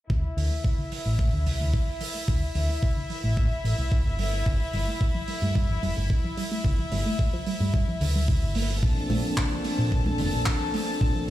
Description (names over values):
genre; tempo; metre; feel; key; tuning
nu-disco, nu disco; 110 BPM; 4/4; straight; D minor; A4 = 440 Hz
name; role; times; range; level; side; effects
rich chamber string section; sustained chords; 0.1-11.3 s; E4 to A5; -33 LUFS; left 3 dB; sidechain pumping, low-pass filter
analog pluck; arpeggios; 0.1-11.2 s; C3 to Bb3; -34 LUFS; right 2 dB; chorus, vintage 12-bit sampler grit, sidechain pumping, dub echo
fingered electric bass; bass; 0.1-11.3 s; F1 to Bb2; -26 LUFS; equal; none
electronic kick drum; drums; 0.1-11.1 s; none; -25 LUFS; equal; none
damped 70s drum kit; drums; 0.4-10.8 s; handclaps, hi-hat; -36 LUFS; right 4 dB; none
warm analog pad; accompaniment; 8.8-11.3 s; F3 to A4; -29 LUFS; left 1 dB; chorus, sidechain pumping, ping-pong delay
congas; percussion; 9.1-10.3 s; none; -35 LUFS; left 1 dB; none
room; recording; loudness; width
small room ambience; played on a big sound system in a bare room, stone room reverb; -23 LUFS; side -14 dB against mid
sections
0.1-11.3 A section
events
filter sweep on fingered electric bass 0.1-11.3; filter sweep on string section 0.1-11.3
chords
0.1 Dm7; 4.2 G7(no3); 8.8 Bbmaj7